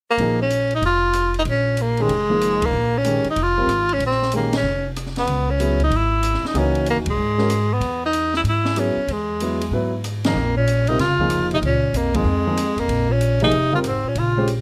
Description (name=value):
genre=modal jazz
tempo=189 BPM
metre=4/4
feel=swing 64% on 8ths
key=unclear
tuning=A4 = 443 Hz
part: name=clear tenor saxophone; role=melody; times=0.1-14.5 s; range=Ab3 to F4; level=-23 LUFS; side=equal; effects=none
part: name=warm concert grand piano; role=accompaniment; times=0.2-14.5 s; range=Eb3 to C5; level=-26 LUFS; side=equal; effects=none
part: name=upright bass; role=bass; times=0.2-14.6 s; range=F1 to Ab2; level=-26 LUFS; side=equal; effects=none
part: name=open jazz drum kit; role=drums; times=0.2-14.6 s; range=hi-hat, kick drum, ride cymbal, rim click, snare drum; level=-33 LUFS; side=equal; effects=none
part: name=mellow bass clarinet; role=second line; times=10.3-14.5 s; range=F2 to Db3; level=-26 LUFS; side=equal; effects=none
room=little or no reverb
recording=close, detailed microphones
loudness=-20 LUFS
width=mono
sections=0.2-14.6 A section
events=band accent 2.6, 4.5, 7.0, 10.2, 12.1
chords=0.2 Bbm7; 5.3 Dbm9; 10.4 Bbm7